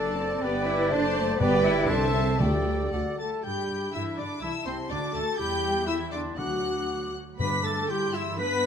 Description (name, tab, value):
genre	quick classical-period movement for symphony orchestra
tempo	121 BPM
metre	2/4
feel	rubato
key	G major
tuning	A4 = 440 Hz
part	rich studio violin section	melody	0.0-8.7 s	F#5 to B6	-36 LUFS	left 2 dB	none
part	clear oboe	second line	0.0-8.7 s	C5 to B5	-37 LUFS	right 2 dB	none
part	mellow clarinet	second line	0.0-8.7 s	D4 to C5	-35 LUFS	right 2 dB	none
part	mellow hollow concert flute	second line	0.0-8.7 s	F#5 to D6	-37 LUFS	left 3 dB	none
part	rich studio violin section	second line	0.0-8.7 s	C5 to B5	-37 LUFS	left 2 dB	none
part	rich studio viola section	accompaniment	0.0-8.7 s	C4 to C5	-35 LUFS	left 1 dB	none
part	mellow French horn section	sustained chords	0.0-8.7 s	C4 to C5	-32 LUFS	left 4 dB	none
part	warm trumpet section	stabs	0.0-8.7 s	C4 to D5	-34 LUFS	right 2 dB	none
part	clear studio double bass section	bass	0.0-8.7 s	F#1 to G2	-33 LUFS	right 3 dB	none
part	rich studio cello section	bass	0.0-8.7 s	C3 to E4	-33 LUFS	right 2 dB	none
part	timpani	percussion	1.4-2.9, 6.4-7.9 s	G2 to D3	-32 LUFS	left 2 dB	none
room	moderate scoring stage reverb, RT60 1.8 s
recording	none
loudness	-24 LUFS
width	side -7 dB against mid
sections	0.0-3.4 A section; 3.4-8.7 B section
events	none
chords	0.4 G; 0.9 D7/F#; 1.4 G; 1.9 Am/C; 2.4 Dsus4; 2.9 D; 3.4 G; 4.4 Am; 4.9 D; 5.4 Em; 6.4 D; 7.4 G; 7.9 C/G